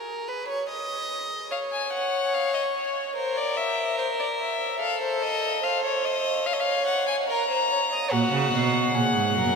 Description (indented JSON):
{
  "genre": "classical, baroque-style fugue for string quartet",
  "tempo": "73 BPM",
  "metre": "4/4",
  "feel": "straight",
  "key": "unclear",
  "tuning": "A4 = 441 Hz",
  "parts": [
    { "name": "rich violin", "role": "second line", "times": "0.0-9.6 s", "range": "Gb4 to Eb5", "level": "-27 LUFS", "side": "right 1 dB", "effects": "none" },
    { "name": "warm violin", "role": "melody", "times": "1.5-9.6 s", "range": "C5 to Bb5", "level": "-26 LUFS", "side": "left 3 dB", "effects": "none" },
    { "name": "rich cello", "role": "bass", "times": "8.1-9.6 s", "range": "Gb2 to Db3", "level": "-23 LUFS", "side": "right 4 dB", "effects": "none" }
  ],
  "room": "wet cathedral reverb, RT60 7.2 s",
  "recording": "none",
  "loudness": "-23 LUFS",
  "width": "side -5 dB against mid",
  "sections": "0.0-9.6 A section",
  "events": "none",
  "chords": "0.0 N.C.; 1.5 Dbsus4; 3.2 C7/Bb (rootless); 4.8 F/A; 6.5 Bbm/Db; 8.1 Gbadd9",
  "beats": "0.69 | 1.51 2.34 3.17 3.99 | 4.82 5.64 6.47 7.29 | 8.12 8.95"
}